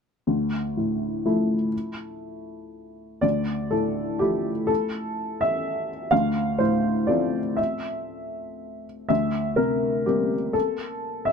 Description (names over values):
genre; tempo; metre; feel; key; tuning
neoclassical minimalist piano; 111-129 BPM; 3/4; rubato; D minor; A4 = 438 Hz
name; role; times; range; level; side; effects
dark upright piano; solo; 0.3-11.3 s; D2 to F5; -23 LUFS; left 1 dB; none
room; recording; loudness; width
light reverb; close, detailed microphones; -22 LUFS; side -6 dB against mid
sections
0.3-3.2 A section; 3.2-11.3 B section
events
none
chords
0.3 Dmadd9; 6.1 Fmaj7/D; 9.1 C7/D